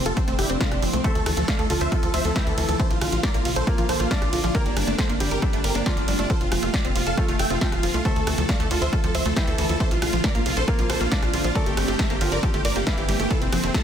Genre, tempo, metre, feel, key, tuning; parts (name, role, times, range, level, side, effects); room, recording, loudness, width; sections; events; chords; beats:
uplifting trance; 137 BPM; 4/4; straight; D minor; A4 = 438 Hz
big supersaw lead; melody; 0.1-13.8 s; A3 to G5; -27 LUFS; equal; vintage 12-bit sampler grit, sidechain pumping, ping-pong delay
plucky unison lead; second line; 0.1-13.8 s; C4 to G5; -35 LUFS; equal
tight sequencer bass; bass; 0.1-13.7 s; F1 to D2; -27 LUFS; equal; sidechain pumping
punchy analog drum machine; drums; 0.1-13.8 s; hi-hat, ride cymbal, rim click, snare drum; -29 LUFS; right 1 dB; overdrive, sidechain pumping on hats, sidechain pumping on cymbals
wide unison pluck; arpeggios; 0.2-13.7 s; C3 to C5; -31 LUFS; right 2 dB; sidechain pumping, ping-pong delay
electronic kick drum; drums; 0.2-13.8 s; -25 LUFS; equal; overdrive
swell; sound effects; 0.3-1.0 s; -33 LUFS; right 1 dB
warm grand piano; second line; 1.0-13.4 s; E3 to D5; -32 LUFS; equal; dub echo
light reverb; dense, heavily limited modern master; -20 LUFS; side -9 dB against mid
0.0-13.8 A section
swell 0.3-1.0
0.0 F; 1.0 Dmadd9; 2.8 Bbadd9; 4.5 Gmadd9; 6.3 F; 8.1 Dmadd9; 9.8 Bbadd9; 11.6 Gmadd9; 13.3 F
0.17 0.61 | 1.04 1.48 1.92 2.36 | 2.80 3.23 3.67 4.11 | 4.55 4.99 5.42 5.86 | 6.30 6.74 7.17 7.61 | 8.05 8.49 8.93 9.37 | 9.80 10.24 10.68 11.12 | 11.55 11.99 12.43 12.87 | 13.31 13.74